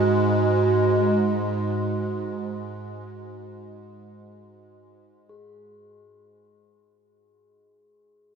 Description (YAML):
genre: world meditative, free-time meditation music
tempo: free time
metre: none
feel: none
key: unclear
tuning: A4 = 440 Hz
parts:
  - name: evolving wavetable pad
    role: drone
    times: 0.0-7.1 s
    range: G#2 to G#3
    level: -24 LUFS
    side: right 1 dB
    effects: chorus, built-in reverb
  - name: bronze singing bowl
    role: texture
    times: 0.0-7.5 s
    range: F#4 to G#4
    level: -27 LUFS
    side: right 4 dB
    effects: none
room: wet cathedral reverb, RT60 6.8 s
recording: in a vast, echoing space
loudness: -20 LUFS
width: side -6 dB against mid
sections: 0.0-7.0 A section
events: fade-out 0.0-7.0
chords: none